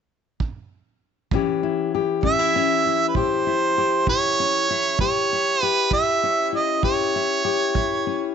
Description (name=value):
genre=acoustic country blues, solo or duo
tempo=65 BPM (dotted quarters)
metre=12/8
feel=straight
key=A mixolydian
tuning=A4 = 441 Hz
part: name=kick drum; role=drums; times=0.4-7.9 s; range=none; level=-26 LUFS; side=right 4 dB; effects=none
part: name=fingerpicked steel-string acoustic guitar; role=accompaniment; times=1.3-8.3 s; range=A2 to G4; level=-23 LUFS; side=left 9 dB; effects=none
part: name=bright harmonica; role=melody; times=2.2-8.3 s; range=B4 to E5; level=-20 LUFS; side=right 5 dB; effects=none
room=light reverb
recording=1960s-style stereo, nothing above 8.0 kHz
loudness=-19 LUFS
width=side -7 dB against mid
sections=0.0-1.3 A section; 1.3-8.3 B section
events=none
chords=0.0 N.C.; 1.3 A7